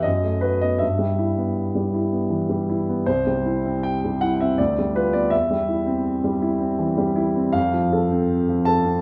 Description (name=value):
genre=classical, romantic character piece for solo piano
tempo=80 BPM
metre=3/4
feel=rubato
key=unclear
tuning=A4 = 440 Hz
part: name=warm concert grand piano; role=solo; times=0.0-9.0 s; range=C2 to A5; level=-22 LUFS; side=equal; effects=none
room=moderate recital hall reverb, RT60 1.4 s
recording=none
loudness=-22 LUFS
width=mono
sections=0.0-9.0 A section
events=none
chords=0.1 B7/F#; 0.8 Em/G; 3.1 C; 4.6 G7/D; 5.3 C/E; 7.6 F